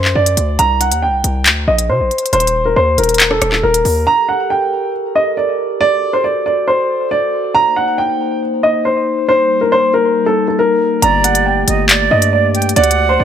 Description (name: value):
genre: hip hop, drill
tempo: 138 BPM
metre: 4/4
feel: half-time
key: G harmonic minor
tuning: A4 = 440 Hz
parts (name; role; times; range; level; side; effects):
- warm upright piano; melody; 0.0-13.2 s; A4 to Bb5; -14 LUFS; equal; ping-pong delay
- distorted 808-style bass; bass; 0.0-4.1, 11.0-13.2 s; Eb1 to C3; -17 LUFS; equal; distortion
- drill drum kit; drums; 0.0-4.0, 11.0-13.0 s; handclaps, hi-hat, rim click; -14 LUFS; left 1 dB; none
- glass harmonica; sustained chords; 4.1-13.2 s; G3 to D5; -20 LUFS; left 1 dB; none
- jazz flute; second line; 11.0-13.2 s; D5 to G5; -16 LUFS; right 8 dB; ping-pong delay
room: light reverb, small room ambience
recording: none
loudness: -11 LUFS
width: side -9 dB against mid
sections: 0.0-4.1 A section; 4.1-13.2 B section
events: none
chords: 0.0 D; 0.6 C7(no3); 2.3 Eb5; 4.1 Gmadd9; 5.8 D; 7.5 Cm7; 9.3 Eb; 11.0 Gmadd9